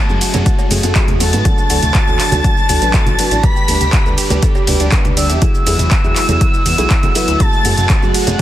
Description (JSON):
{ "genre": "progressive house", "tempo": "121 BPM", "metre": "4/4", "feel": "straight", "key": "F# minor", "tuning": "A4 = 436 Hz", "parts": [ { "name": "expressive synth lead", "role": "melody", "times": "0.0-8.0 s", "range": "A5 to E6", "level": "-20 LUFS", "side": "equal", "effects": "lush chorus, sidechain pumping, tape echo" }, { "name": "rich studio violin section", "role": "second line", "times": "0.0-4.1, 7.4-8.0 s", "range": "A6 to B6", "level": "-25 LUFS", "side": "left 2 dB", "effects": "sidechain pumping, tape echo" }, { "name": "supersaw pad", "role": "sustained chords", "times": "0.0-8.4 s", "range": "A2 to G4", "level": "-26 LUFS", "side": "equal", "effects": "phaser, vintage 12-bit sampler grit, sidechain pumping" }, { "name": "soft round pluck", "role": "arpeggios", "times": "0.1-8.4 s", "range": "E4 to G4", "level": "-25 LUFS", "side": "right 1 dB", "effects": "wide subtle chorus, sidechain pumping, tape echo" }, { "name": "felt-muted upright piano", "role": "stabs", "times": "0.1-8.4 s", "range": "F#3 to E5", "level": "-21 LUFS", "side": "right 1 dB", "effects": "sidechain pumping" }, { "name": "dark detuned saw bass", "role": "bass", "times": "0.1-8.4 s", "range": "E1 to G#2", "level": "-18 LUFS", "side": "equal", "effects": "sidechain pumping" }, { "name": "deep house drum kit", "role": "drums", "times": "0.1-8.4 s", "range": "handclaps, hi-hat, ride cymbal, shaker", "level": "-19 LUFS", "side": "equal", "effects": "overdrive, sidechain pumping on hats, sidechain pumping on perc, sidechain pumping on cymbals, sidechain pumping on toms" }, { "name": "cowbell and congas", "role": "percussion", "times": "0.3-8.4 s", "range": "none", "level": "-23 LUFS", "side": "right 2 dB", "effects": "sidechain pumping on perc" }, { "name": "electronic kick drum", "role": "drums", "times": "0.5-8.4 s", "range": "none", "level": "-15 LUFS", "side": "equal", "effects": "overdrive" }, { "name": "backwards swelling texture", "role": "texture", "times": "7.6-8.4 s", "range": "F#5 to F#6", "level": "-30 LUFS", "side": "left 7 dB", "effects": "built-in reverb, sidechain pumping" } ], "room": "light reverb", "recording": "dense, heavily limited modern master", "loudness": "-11 LUFS", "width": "side -13 dB against mid", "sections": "0.0-8.4 A section", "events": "none", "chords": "0.0 F#madd9; 1.5 D; 3.4 G/D; 5.4 Eadd9; 7.4 F#madd9", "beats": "0.46 0.95 | 1.45 1.95 2.44 2.94 | 3.44 3.93 4.43 4.92 | 5.42 5.91 6.41 6.91 | 7.40 7.90 8.39" }